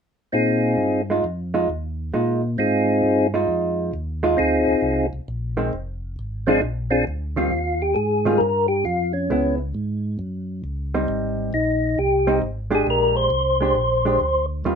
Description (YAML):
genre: jazz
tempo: 134 BPM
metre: 4/4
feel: swing 66% on 8ths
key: unclear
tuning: A4 = 444 Hz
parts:
  - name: percussive tonewheel organ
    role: melody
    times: 0.3-14.5 s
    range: C4 to C5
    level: -19 LUFS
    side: left 1 dB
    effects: slow rotary speaker
  - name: mellow tonewheel organ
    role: bass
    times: 0.3-14.8 s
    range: F1 to Bb2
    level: -26 LUFS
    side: equal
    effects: chorus vibrato, slow rotary speaker
  - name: hollow-body jazz guitar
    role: accompaniment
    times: 1.1-14.8 s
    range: Eb3 to G4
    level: -22 LUFS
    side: right 2 dB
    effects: none
room: light reverb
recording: minimal, uncompressed stereo recording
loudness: -19 LUFS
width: side -6 dB against mid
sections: 0.3-7.5 A section; 7.5-14.8 B section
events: none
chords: 0.3 Bb7sus4; 5.7 Fm; 6.6 Bb7; 7.5 Ebadd9; 9.3 Dbm7; 10.2 Gb5; 11.1 Abmaj7; 12.9 Bb13